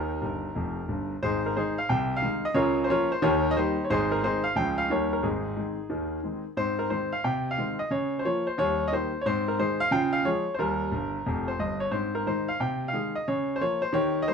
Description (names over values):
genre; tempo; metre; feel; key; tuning
jazz, stride piano; 179 BPM; 4/4; swing 65% on 8ths; Ab major; A4 = 439 Hz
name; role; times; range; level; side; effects
clear grand piano; solo; 0.0-14.3 s; F1 to G5; -25 LUFS; equal; none
room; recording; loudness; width
wet club reverb, RT60 0.7 s; heard from further back in the room; -25 LUFS; side -6 dB against mid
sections
0.0-6.6 A section; 6.6-14.3 A section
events
grand piano fill 0.2-1.2, 10.9-11.9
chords
0.0 Eb; 1.2 Ab5; 1.9 Ab/C; 2.6 Bbm/Db; 3.2 Eb; 3.9 Ab; 4.6 Db; 4.9 Eb7; 5.2 Ab; 7.2 Ab/C; 7.9 Bbm/Db; 8.6 Eb; 9.2 Ab; 9.9 Db; 10.6 Eb; 11.9 Ab; 12.6 Ab/C; 13.3 Bbm/Db